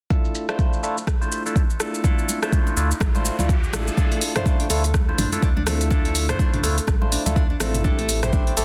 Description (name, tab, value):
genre	afro house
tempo	124 BPM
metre	4/4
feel	swing 58% on 16ths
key	D minor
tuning	A4 = 440 Hz
part	barky tine electric piano	stabs	0.1-8.6 s	A3 to C5	-29 LUFS	equal	phaser, sidechain pumping, low-pass filter, dub echo
part	deep house drum kit	drums	0.1-8.6 s	hi-hat, rim click, shaker, toms	-29 LUFS	equal	overdrive, low-pass filter on perc, low-pass filter on snare, low-pass filter on hats, low-pass filter on toms, low-pass filter on room
part	electronic kick drum	drums	0.1-8.4 s	none	-22 LUFS	equal	overdrive
part	riser	sound effects	2.3-4.0 s	none	-38 LUFS	equal	none
part	congas	percussion	2.0-8.6 s	none	-35 LUFS	equal	none
part	round analog bass	bass	2.8-8.6 s	A1 to D2	-27 LUFS	equal	sidechain pumping
part	nylon-string guitar	arpeggios	4.0-8.6 s	A3 to C5	-32 LUFS	equal	sidechain pumping, dub echo
room	light reverb, digital ambience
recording	dense, heavily limited modern master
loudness	-21 LUFS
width	mono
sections	0.1-4.0 A section; 4.0-8.6 B section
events	riser 2.3-4.0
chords	0.1 Dmadd9; 7.8 Am7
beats	| 0.10 0.59 1.07 1.56 | 2.04 2.52 3.01 3.49 | 3.98 4.46 4.94 5.43 | 5.91 6.39 6.88 7.36 | 7.85 8.33